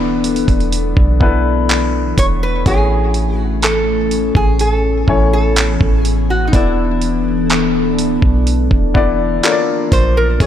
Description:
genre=contemporary R&B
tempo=62 BPM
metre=4/4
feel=straight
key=A major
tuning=A4 = 440 Hz
part: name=warm grand piano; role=accompaniment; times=0.0-10.5 s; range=A3 to G#5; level=-20 LUFS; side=left 5 dB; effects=none
part: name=deep dark ambient pad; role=sustained chords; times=0.0-10.5 s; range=E3 to A4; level=-19 LUFS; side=left 2 dB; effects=chorus, built-in reverb
part: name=soft 808-style bass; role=bass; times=0.0-10.5 s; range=E1 to B1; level=-17 LUFS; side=equal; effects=none
part: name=dusty soul sampler-style drum kit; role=drums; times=0.2-10.5 s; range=handclaps, hi-hat, kick drum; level=-16 LUFS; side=right 1 dB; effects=none
part: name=metal-body resonator slide guitar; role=melody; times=2.2-10.5 s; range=D#4 to C#5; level=-19 LUFS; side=right 1 dB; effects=ping-pong delay
room=moderate plate reverb, RT60 2.8 s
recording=dreamy mix soaked in reverb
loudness=-12 LUFS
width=side -10 dB against mid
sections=0.0-2.7 A section; 2.7-10.5 B section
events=none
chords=0.0 E7sus4; 2.7 Amaj7; 6.5 E7sus4; 9.4 Bbmaj7

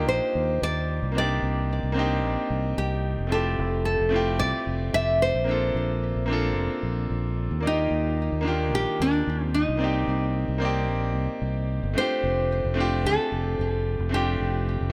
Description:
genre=sunset chillout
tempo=111 BPM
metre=4/4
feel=straight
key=unclear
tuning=A4 = 439 Hz
part: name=nylon-string guitar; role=melody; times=0.0-14.9 s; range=D4 to E5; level=-29 LUFS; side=equal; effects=delay
part: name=clear concert grand piano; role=accompaniment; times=0.0-14.9 s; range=Eb3 to D5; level=-31 LUFS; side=equal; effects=tape echo
part: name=fingered electric bass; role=bass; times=0.0-14.9 s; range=F1 to Eb2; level=-29 LUFS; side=equal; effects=tube saturation
room=light reverb, small room ambience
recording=none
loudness=-25 LUFS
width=mono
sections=0.0-12.0 A section; 12.0-14.9 B section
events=none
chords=0.0 Ebmaj9; 1.2 Cm9; 3.3 Fmaj9; 5.5 Bbmaj9; 7.6 Ebmaj9; 9.8 Cm9; 12.0 F6

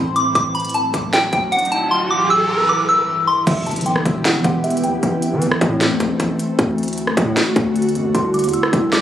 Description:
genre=hip hop, trap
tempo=154 BPM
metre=4/4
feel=half-time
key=E minor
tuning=A4 = 440 Hz
part: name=soft synth bell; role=melody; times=0.0-5.0, 8.1-9.0 s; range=E5 to E6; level=-18 LUFS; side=equal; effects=chorus, phaser, low-pass filter, digital delay
part: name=ethereal airy pad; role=sustained chords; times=0.0-9.0 s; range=C2 to G4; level=-21 LUFS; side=equal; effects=ensemble chorus, built-in reverb
part: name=downlifter, riser and impact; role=sound effects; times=1.0-5.0 s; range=none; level=-25 LUFS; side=equal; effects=none
part: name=trap drum kit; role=drums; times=0.2-9.0 s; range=crash cymbal, hi-hat, kick drum, rim click, snare drum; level=-21 LUFS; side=equal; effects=none
part: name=hard-hitting 808-style bass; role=bass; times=3.5-9.0 s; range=E1 to E3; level=-20 LUFS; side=equal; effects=none
room=light reverb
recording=recorded on a phone in the room, studio ambience, vinyl crackle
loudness=-15 LUFS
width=side -11 dB against mid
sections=0.0-3.5 A section; 3.5-9.0 B section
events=riser 1.0-3.5; impact 3.5-5.0; filter sweep on synth bell 3.5-9.0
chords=0.4 D; 1.9 C; 3.5 Em; 5.0 Am; 6.6 D; 8.1 C

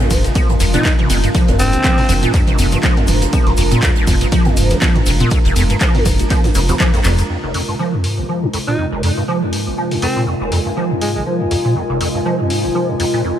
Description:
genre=acid house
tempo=121 BPM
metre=4/4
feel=swing 56% on 16ths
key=F dorian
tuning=A4 = 440 Hz
part: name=warbly tape-like pad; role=sustained chords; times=0.0-13.4 s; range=C3 to F4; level=-24 LUFS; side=equal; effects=chorus, built-in reverb, sidechain pumping
part: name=liquid acid bass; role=riff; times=0.0-13.3 s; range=F1 to F3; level=-18 LUFS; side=equal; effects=phaser, overdrive, ensemble chorus, sidechain pumping, digital delay
part: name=open jazz drum kit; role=drums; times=0.0-13.4 s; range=hi-hat, shaker, snare drum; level=-32 LUFS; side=right 2 dB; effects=none
part: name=punchy analog drum machine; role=drums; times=0.0-13.1 s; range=congas, handclaps, hi-hat, ride cymbal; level=-22 LUFS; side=right 1 dB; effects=none
part: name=deep dark ambient pad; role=texture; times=0.0-13.4 s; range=F4 to Eb6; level=-24 LUFS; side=equal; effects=chorus, built-in reverb, sidechain pumping
part: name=saturated sub bass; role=bass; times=0.1-7.2 s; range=F1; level=-18 LUFS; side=equal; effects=tube saturation, sidechain pumping
part: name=electronic kick drum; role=drums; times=0.1-6.9 s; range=none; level=-15 LUFS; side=equal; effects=none
part: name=tube shaker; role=percussion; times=0.1-7.3 s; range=none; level=-30 LUFS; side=left 4 dB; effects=none
part: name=growling alto saxophone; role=melody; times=0.7-2.3, 8.7-11.2 s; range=Ab3 to Eb4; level=-23 LUFS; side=equal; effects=digital delay
room=light reverb, small room ambience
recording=none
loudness=-13 LUFS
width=side -10 dB against mid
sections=0.0-7.3 A section; 7.3-13.4 B section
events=drop 0.0-7.3; drum fill 7.0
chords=0.0 Fm

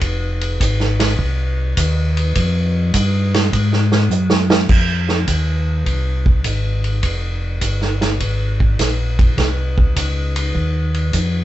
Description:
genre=soul jazz organ trio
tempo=102 BPM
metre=4/4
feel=swing 68% on 8ths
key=F minor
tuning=A4 = 440 Hz
part: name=mellow tonewheel organ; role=bass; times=0.0-11.4 s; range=F1 to Ab2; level=-18 LUFS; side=left 1 dB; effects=slow rotary speaker
part: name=vintage drum kit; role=drums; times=0.0-11.3 s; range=crash cymbal, hi-hat, kick drum, ride cymbal, snare drum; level=-18 LUFS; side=right 1 dB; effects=none
room=light reverb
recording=heard from further back in the room, nothing above 8.0 kHz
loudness=-15 LUFS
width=side -14 dB against mid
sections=0.0-4.7 A section; 4.7-11.4 B section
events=drum fill 4.1-4.7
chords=none

